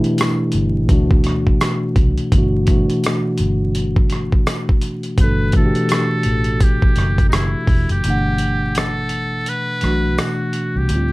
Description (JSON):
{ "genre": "lo-fi hip hop", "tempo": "84 BPM", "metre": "4/4", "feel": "swing 60% on 16ths", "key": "G major", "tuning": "A4 = 440 Hz", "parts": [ { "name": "mellow tine electric piano", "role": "accompaniment", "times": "0.0-11.1 s", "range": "A2 to F#5", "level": "-19 LUFS", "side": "equal", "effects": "slow stereo tremolo, cassette tape, low-pass filter" }, { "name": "dusty soul sampler-style drum kit", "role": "drums", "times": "0.0-11.1 s", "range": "hi-hat, kick drum, rim click", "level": "-17 LUFS", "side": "equal", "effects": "none" }, { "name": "tambourine", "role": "percussion", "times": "0.2-10.4 s", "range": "none", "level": "-40 LUFS", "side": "right 6 dB", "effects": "none" }, { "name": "vintage muted fingered electric bass", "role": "bass", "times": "0.5-11.1 s", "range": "E1 to D2", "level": "-20 LUFS", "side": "equal", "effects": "none" }, { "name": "trumpet with metal mute", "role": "melody", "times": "5.2-11.1 s", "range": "Eb4 to B4", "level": "-24 LUFS", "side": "equal", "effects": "low-pass filter" } ], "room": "light reverb", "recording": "vinyl crackle", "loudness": "-15 LUFS", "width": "side -21 dB against mid", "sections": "0.0-8.0 A section; 8.0-11.1 B section", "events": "break 0.0-5.2, 8.0-11.1", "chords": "0.0 A9sus4; 0.9 D13; 2.3 Gmaj9", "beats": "0.18 0.89 1.61 | 2.32 3.04 3.75 4.46 | 5.18 5.89 6.61 7.32 | 8.04 8.75 9.46 10.18 | 10.89" }